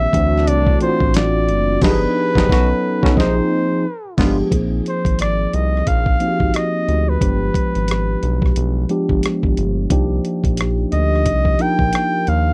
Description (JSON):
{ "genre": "R&B, neo-soul", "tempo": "89 BPM", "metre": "4/4", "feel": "swing 59% on 16ths", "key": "unclear", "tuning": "A4 = 440 Hz", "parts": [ { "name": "warm flugelhorn", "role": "melody", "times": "0.0-12.5 s", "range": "B4 to G5", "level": "-23 LUFS", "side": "equal", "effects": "none" }, { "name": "mellow tine electric piano", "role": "accompaniment", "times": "0.0-12.5 s", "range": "Eb3 to Bb4", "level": "-22 LUFS", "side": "equal", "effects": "phaser" }, { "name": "round analog bass", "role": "bass", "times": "0.0-12.5 s", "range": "F#1 to Eb2", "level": "-22 LUFS", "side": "equal", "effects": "none" }, { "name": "brilliant trombone section", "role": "stabs", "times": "0.1-4.4 s", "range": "A2 to F#4", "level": "-29 LUFS", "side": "equal", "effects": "none" }, { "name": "dusty soul sampler-style drum kit", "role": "drums", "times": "0.1-12.5 s", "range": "crash cymbal, hi-hat, kick drum, rim click, snare drum", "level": "-21 LUFS", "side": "equal", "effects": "none" } ], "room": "little or no reverb", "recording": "dry, close 1970s-style studio recording", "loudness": "-17 LUFS", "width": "mono", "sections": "0.0-4.5 A section; 4.5-12.5 B section", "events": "band accent 1.8-4.5", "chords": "0.1 D7; 1.8 G7b9b13; 2.5 B9; 3.2 Bb9sus4; 3.8 G7b9; 4.5 Bb9sus4; 7.2 G7b9; 9.9 Cm11" }